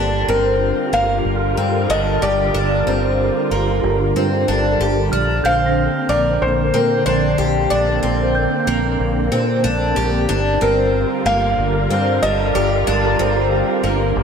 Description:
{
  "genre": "dream pop",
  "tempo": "93 BPM",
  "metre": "4/4",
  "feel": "straight",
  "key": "unclear",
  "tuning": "A4 = 440 Hz",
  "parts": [
    { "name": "soft string machine", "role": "sustained chords", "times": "0.0-14.2 s", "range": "D3 to Bb4", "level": "-20 LUFS", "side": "right 1 dB", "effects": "phaser, ensemble chorus, shimmer reverb" },
    { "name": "picked twelve-string acoustic guitar", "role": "arpeggios", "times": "0.0-14.2 s", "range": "D3 to G4", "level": "-21 LUFS", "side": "left 1 dB", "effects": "wide subtle chorus, shimmer reverb, analog delay" },
    { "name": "fingered electric bass", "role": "bass", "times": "0.0-14.2 s", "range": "G1 to Bb2", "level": "-21 LUFS", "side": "equal", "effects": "none" },
    { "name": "felt-muted upright piano", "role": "melody", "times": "0.3-13.8 s", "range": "Bb4 to F5", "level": "-21 LUFS", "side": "equal", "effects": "shimmer reverb, analog delay" },
    { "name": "glockenspiel with rubber mallets", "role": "texture", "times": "5.1-10.0 s", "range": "F6 to C7", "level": "-28 LUFS", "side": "right 3 dB", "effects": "shimmer reverb, analog delay" }
  ],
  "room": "moderate spring reverb, RT60 1.7 s, small room ambience",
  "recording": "echo-heavy mix",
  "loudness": "-15 LUFS",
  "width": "side -6 dB against mid",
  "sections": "0.0-14.2 A section",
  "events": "none",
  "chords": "0.0 Gm7; 5.1 Bbadd9; 10.3 Gm7"
}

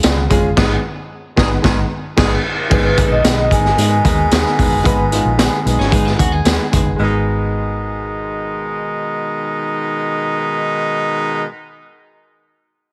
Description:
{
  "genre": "uptempo 1960s-style soul",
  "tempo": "112 BPM",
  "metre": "4/4",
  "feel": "straight",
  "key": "G# minor",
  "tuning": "A4 = 440 Hz",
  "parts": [
    { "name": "warm upright piano", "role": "accompaniment", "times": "0.0-11.5 s", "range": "G#3 to B4", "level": "-23 LUFS", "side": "equal", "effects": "none" },
    { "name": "vintage muted fingered electric bass", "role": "bass", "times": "0.0-11.4 s", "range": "E#1 to G#2", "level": "-22 LUFS", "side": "equal", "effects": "none" },
    { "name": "raw garage drum kit", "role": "drums", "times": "0.0-6.9 s", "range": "crash cymbal, hi-hat, kick drum, snare drum", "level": "-18 LUFS", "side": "equal", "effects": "none" },
    { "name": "warm horn section", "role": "second line", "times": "0.6-11.4 s", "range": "B2 to G#4", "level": "-24 LUFS", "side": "equal", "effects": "none" },
    { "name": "vibraphone with soft mallets", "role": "melody", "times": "2.7-6.4 s", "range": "B4 to G#5", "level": "-22 LUFS", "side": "equal", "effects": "none" },
    { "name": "electric guitar at the edge of break-up", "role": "riff", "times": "5.8-7.0 s", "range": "C#4 to G#4", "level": "-26 LUFS", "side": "equal", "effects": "none" }
  ],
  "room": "light reverb, studio reverb",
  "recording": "heavily compressed radio sound",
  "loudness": "-16 LUFS",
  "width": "mono",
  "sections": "0.0-2.7 A section; 2.7-7.0 B section; 7.0-11.3 C section",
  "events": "band accent 0.6-2.7",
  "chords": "0.0 C#; 0.6 G#m"
}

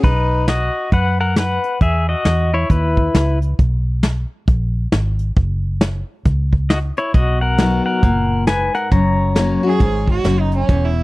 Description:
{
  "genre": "honky-tonk and classic country",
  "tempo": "135 BPM",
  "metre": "4/4",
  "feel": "swing 61% on 8ths",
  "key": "B major",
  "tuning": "A4 = 440 Hz",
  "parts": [
    { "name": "pedal steel guitar", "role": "melody", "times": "0.0-3.4, 6.7-10.5 s", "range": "D#4 to A#5", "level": "-20 LUFS", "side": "left 2 dB", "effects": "none" },
    { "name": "picked steel-string acoustic guitar", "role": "accompaniment", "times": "0.0, 7.1-11.0 s", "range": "E2 to F#4", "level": "-20 LUFS", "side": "left 3 dB", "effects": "none" },
    { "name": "vintage muted fingered electric bass", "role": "bass", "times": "0.0-11.0 s", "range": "E1 to F#2", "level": "-18 LUFS", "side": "equal", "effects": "none" },
    { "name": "soft brush drum kit", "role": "drums", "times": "0.0-10.8 s", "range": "hi-hat, kick drum, snare drum", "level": "-16 LUFS", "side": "equal", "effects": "none" },
    { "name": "clear fiddle", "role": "second line", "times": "9.7-11.0 s", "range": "C#4 to G#4", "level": "-21 LUFS", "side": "right 5 dB", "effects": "none" }
  ],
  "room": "little or no reverb",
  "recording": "dry, close 1970s-style studio recording",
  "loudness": "-15 LUFS",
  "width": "side -20 dB against mid",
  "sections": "0.0-11.0 A section",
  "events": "none",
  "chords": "0.0 B; 1.8 E5; 3.6 G#madd9; 5.4 F#5; 7.1 B; 8.9 F#"
}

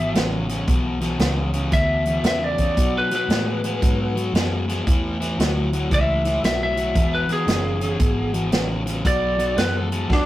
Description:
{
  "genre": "electric blues shuffle",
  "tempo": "115 BPM",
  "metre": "4/4",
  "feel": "swing 64% on 8ths",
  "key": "E mixolydian",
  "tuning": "A4 = 440 Hz",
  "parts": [
    { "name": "lightly driven lead guitar", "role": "melody", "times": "0.0-10.3 s", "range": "D4 to E5", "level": "-23 LUFS", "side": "equal", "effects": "slapback echo" },
    { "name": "overdriven electric guitar", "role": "riff", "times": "0.0-10.3 s", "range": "E2 to G#3", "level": "-24 LUFS", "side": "left 1 dB", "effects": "none" },
    { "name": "vintage muted fingered electric bass", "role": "bass", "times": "0.0-10.3 s", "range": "E1 to B2", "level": "-26 LUFS", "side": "equal", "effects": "none" },
    { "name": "natural country drum kit", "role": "drums", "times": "0.2-10.3 s", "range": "hi-hat, kick drum, snare drum", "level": "-22 LUFS", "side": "equal", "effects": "none" }
  ],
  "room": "light reverb",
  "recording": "rough rehearsal-room recording",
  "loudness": "-19 LUFS",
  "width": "side -15 dB against mid",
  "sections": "0.0-10.3 A section",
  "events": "lead electric guitar solo 0.0-10.3; drum fill 10.1",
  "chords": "0.0 E5; 2.8 B5; 4.9 A; 7.0 E; 9.0 B5"
}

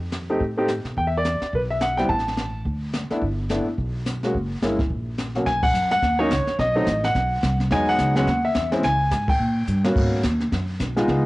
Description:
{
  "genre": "jazz piano trio",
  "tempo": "214 BPM",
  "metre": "4/4",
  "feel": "swing 60% on 8ths",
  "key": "B major from 5.5 s",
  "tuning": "A4 = 438 Hz",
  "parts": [
    { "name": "upright bass", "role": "bass", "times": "0.0-11.3 s", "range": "F#1 to B2", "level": "-25 LUFS", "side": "equal", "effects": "none" },
    { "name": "jazz brush drum kit", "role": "drums", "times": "0.1-11.3 s", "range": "brushed snare drum, crash cymbal, hi-hat, kick drum, snare drum", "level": "-28 LUFS", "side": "equal", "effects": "cassette tape" },
    { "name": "warm baby grand piano", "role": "melody", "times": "0.3-11.3 s", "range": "B2 to A5", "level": "-22 LUFS", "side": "equal", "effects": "cassette tape" }
  ],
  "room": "light reverb, small room ambience",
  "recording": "home recording on cassette",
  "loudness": "-20 LUFS",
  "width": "side -20 dB against mid",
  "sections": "0.0-5.5 A section; 5.5-11.3 B section",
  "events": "band accent 5.6, 9.3; drum fill 9.7",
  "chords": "0.0 F9; 1.0 Em7; 2.1 N.C.; 3.2 G; 4.3 F#; 5.5 Badd9; 6.6 B7b9; 7.7 Emaj7; 8.8 C#5; 9.4 Gm; 10.0 G#m11"
}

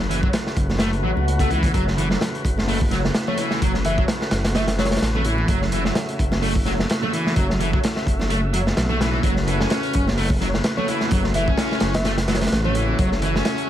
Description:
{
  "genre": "breakbeat, breaks",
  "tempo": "128 BPM",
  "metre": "4/4",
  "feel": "swing 55% on 16ths",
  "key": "F# minor pentatonic",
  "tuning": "A4 = 441 Hz",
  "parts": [
    { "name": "tonewheel organ", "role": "sustained chords", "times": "0.0-13.7 s", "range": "C#3 to E5", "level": "-28 LUFS", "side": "equal", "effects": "overdrive, slow rotary speaker, sidechain pumping" },
    { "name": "dark detuned saw bass", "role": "bass", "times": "0.0-13.4 s", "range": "F#1 to C#2", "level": "-24 LUFS", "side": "equal", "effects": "tube saturation" },
    { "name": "fuzz guitar", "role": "riff", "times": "0.1-13.7 s", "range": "E3 to C#4", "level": "-25 LUFS", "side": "equal", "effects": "distortion, tube saturation, digital delay" },
    { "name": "crunchy breakbeat drum kit", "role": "drums", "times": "0.1-13.7 s", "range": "hi-hat, kick drum, snare drum", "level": "-22 LUFS", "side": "equal", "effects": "none" },
    { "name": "congas", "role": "percussion", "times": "0.7-13.0 s", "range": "none", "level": "-32 LUFS", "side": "right 3 dB", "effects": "none" },
    { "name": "swell", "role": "sound effects", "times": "1.0-1.7 s", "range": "none", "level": "-30 LUFS", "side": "left 4 dB", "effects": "none" },
    { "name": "bell-like FM electric piano", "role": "melody", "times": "3.3-5.0, 10.8-13.0 s", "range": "C#5 to E5", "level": "-29 LUFS", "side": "left 1 dB", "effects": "chorus, telephone sound, cassette tape, digital delay" }
  ],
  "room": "studio ambience",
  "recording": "vinyl crackle",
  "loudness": "-18 LUFS",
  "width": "side -11 dB against mid",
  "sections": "0.0-13.7 A section",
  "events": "swell 1.0-1.7",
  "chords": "0.0 F#m"
}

